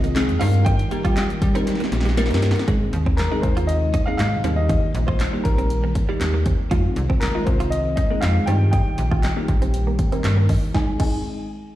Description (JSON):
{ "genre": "dance-pop", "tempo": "119 BPM", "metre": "4/4", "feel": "straight", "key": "Ab major", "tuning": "A4 = 442 Hz", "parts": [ { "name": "warm baby grand piano", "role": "melody", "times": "0.0-11.2 s", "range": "Bb4 to Ab5", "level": "-28 LUFS", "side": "left 1 dB", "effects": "low-pass filter, dub echo" }, { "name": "glassy wavetable pluck", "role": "accompaniment", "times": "0.0-11.2 s", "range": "G3 to Bb4", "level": "-28 LUFS", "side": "left 1 dB", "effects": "chorus, sidechain pumping, low-pass filter" }, { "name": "string machine, violas", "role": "sustained chords", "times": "0.0-11.0 s", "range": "C3 to Ab4", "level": "-31 LUFS", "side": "equal", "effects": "ensemble chorus, sidechain pumping, low-pass filter" }, { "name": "direct-recorded clean electric guitar", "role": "riff", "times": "0.0-11.1 s", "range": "G3 to F4", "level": "-32 LUFS", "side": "right 5 dB", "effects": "ensemble chorus, low-pass filter" }, { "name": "slap-like FM bass", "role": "bass", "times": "0.0-11.2 s", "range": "Ab1 to G3", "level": "-21 LUFS", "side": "equal", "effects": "sidechain pumping" }, { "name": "punchy analog drum machine", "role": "drums", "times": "0.0-11.1 s", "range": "crash cymbal, handclaps, hi-hat, kick drum, snare drum", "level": "-22 LUFS", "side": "equal", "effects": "none" } ], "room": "light reverb, digital ambience", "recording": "played on a big sound system in a bare room, stone room reverb", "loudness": "-18 LUFS", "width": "side -14 dB against mid", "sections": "0.0-2.7 A section; 2.7-10.7 B section; 10.7-11.8 C section", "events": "drum fill 1.7-2.7; filter sweep 2.7-10.7", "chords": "0.4 Eb/G; 2.7 Ab; 4.4 Eb; 6.7 Fm7; 8.5 Eb; 10.7 Ab" }